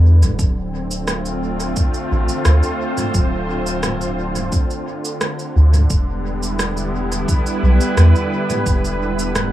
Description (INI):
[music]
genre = ambient dub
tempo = 87 BPM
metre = 4/4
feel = straight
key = D dorian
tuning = A4 = 444 Hz
[part]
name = warm analog pad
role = sustained chords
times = 0.0-9.5 s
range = D3 to C5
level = -22 LUFS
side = right 1 dB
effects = chorus, vintage 12-bit sampler grit
[part]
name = soft dub sub bass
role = bass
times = 0.0-9.5 s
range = D1 to E2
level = -16 LUFS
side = equal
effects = none
[part]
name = organic electronic drum kit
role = drums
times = 0.2-9.5 s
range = rim click, shaker, toms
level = -24 LUFS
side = right 1 dB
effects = dub echo
[part]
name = electronic kick drum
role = drums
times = 0.4-8.8 s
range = none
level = -18 LUFS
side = equal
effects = none
[sound]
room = light reverb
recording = small room ambience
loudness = -16 LUFS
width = side -13 dB against mid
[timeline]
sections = 0.0-9.5 A section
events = none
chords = 0.4 Dm7; 5.9 Em7